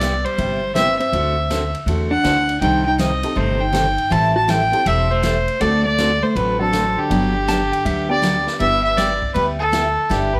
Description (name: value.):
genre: country, western swing.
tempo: 160 BPM.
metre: 4/4.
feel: swing 65% on 8ths.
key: G major.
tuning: A4 = 440 Hz.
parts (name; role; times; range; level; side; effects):
warm fiddle; melody; 0.0-10.4 s; G4 to A5; -21 LUFS; equal; none.
hollow-body jazz guitar; second line; 0.0-8.5 s; D3 to F#4; -27 LUFS; equal; none.
picked steel-string acoustic guitar; accompaniment; 0.0-10.3 s; C3 to B4; -26 LUFS; equal; none.
upright bass; bass; 0.0-10.4 s; E1 to E2; -26 LUFS; equal; none.
swinging big-band drum kit; drums; 0.0-10.4 s; hi-hat, kick drum, ride cymbal, snare drum; -34 LUFS; equal; none.
honky-tonk upright piano; accompaniment; 0.7-9.2 s; B3 to C5; -30 LUFS; equal; none.
clean lap steel guitar; second line; 7.5-8.5 s; E5 to A5; -27 LUFS; equal; none.
room: moderate echo chamber reverb, RT60 1.3 s.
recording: none.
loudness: -18 LUFS.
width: mono.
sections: 0.0-8.6 A section; 8.6-10.4 A section.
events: none.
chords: 0.0 Cmaj7; 1.1 D9; 2.6 Cm6; 4.1 Am7; 5.6 D7; 7.1 Gmaj7; 8.6 G6.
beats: 0.01 0.38 0.75 | 1.12 1.50 1.87 2.24 | 2.62 2.99 3.36 3.74 | 4.11 4.48 4.86 5.23 | 5.60 5.98 6.35 6.73 | 7.10 7.47 7.85 8.22 | 8.60 8.97 9.35 9.72 | 10.10.